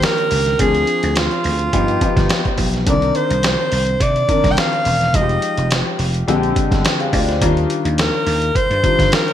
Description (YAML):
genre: polished 1980s jazz-funk pop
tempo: 106 BPM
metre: 4/4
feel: swing 54% on 16ths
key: unclear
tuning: A4 = 435 Hz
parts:
  - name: breathy alto saxophone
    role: melody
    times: 0.0-9.3 s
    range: F4 to G5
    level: -19 LUFS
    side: right 1 dB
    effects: none
  - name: warm grand piano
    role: accompaniment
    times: 0.0-9.3 s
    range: D3 to F5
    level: -20 LUFS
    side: left 3 dB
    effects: analog chorus
  - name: trip hop sampler-style drum kit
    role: drums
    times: 0.0-9.3 s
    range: hi-hat, kick drum, snare drum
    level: -19 LUFS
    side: equal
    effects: gated reverb
  - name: vintage slap bass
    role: bass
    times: 0.3-9.1 s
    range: E1 to C3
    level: -20 LUFS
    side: right 1 dB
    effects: none
room: moderate plate reverb, RT60 1.3 s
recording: bright 1980s-style digital production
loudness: -14 LUFS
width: side -10 dB against mid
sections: 0.0-9.3 A section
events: none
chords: 0.0 Ebmaj7; 0.6 Dm7b5; 1.7 G7b13; 2.9 Cm9; 5.1 Fm9; 6.3 Bb13; 7.4 Ebmaj9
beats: 0.03 | 0.59 1.16 1.73 2.30 | 2.87 3.43 4.00 4.57 | 5.14 5.71 6.28 6.84 | 7.41 7.98 8.55 9.12